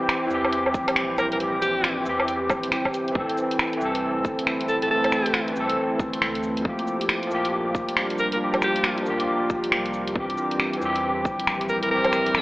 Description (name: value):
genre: future garage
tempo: 137 BPM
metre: 4/4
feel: swing 62% on 16ths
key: unclear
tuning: A4 = 440 Hz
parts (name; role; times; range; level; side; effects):
- overdriven tine electric piano; accompaniment; 0.0-12.4 s; E3 to A4; -25 LUFS; equal; ensemble chorus, sidechain pumping, tape echo
- deep dark ambient pad; sustained chords; 0.0-12.4 s; G3 to C5; -30 LUFS; right 1 dB; chorus, built-in reverb, sidechain pumping
- flickering grainy texture; texture; 0.0-3.2 s; G5; -38 LUFS; equal; none
- garage drum kit; drums; 0.1-12.4 s; cabasa, finger snaps, hi-hat, woodblock; -26 LUFS; equal; small room reverb
- warm sub bass; bass; 0.3-12.4 s; F1 to E2; -41 LUFS; equal; sidechain pumping
- electronic kick drum; drums; 0.7-11.4 s; none; -28 LUFS; equal; small room reverb
- breathy alto saxophone; melody; 1.2-2.0, 4.7-5.5, 8.2-9.0, 11.7-12.4 s; G4 to Bb4; -25 LUFS; equal; tape echo
room: wet lush hall reverb, RT60 1.8 s, digital ambience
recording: vinyl crackle, AM radio sound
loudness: -21 LUFS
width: side -19 dB against mid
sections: 0.0-3.2 A section; 3.2-12.4 A section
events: none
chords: 0.0 C; 3.2 Am; 6.7 Gm7; 10.2 C